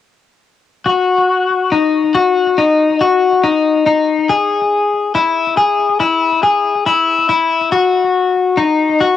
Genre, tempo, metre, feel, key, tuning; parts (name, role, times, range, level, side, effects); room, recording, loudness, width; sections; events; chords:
dream pop; 70 BPM; 4/4; straight; A4 = 437 Hz
clean electric guitar; solo; 0.9-9.2 s; D#4 to G#4; -11 LUFS; left 4 dB; wide subtle chorus, cassette tape, analog delay
moderate booth ambience, RT60 0.2 s; home recording on cassette; -12 LUFS; side -11 dB against mid
0.9-9.2 A section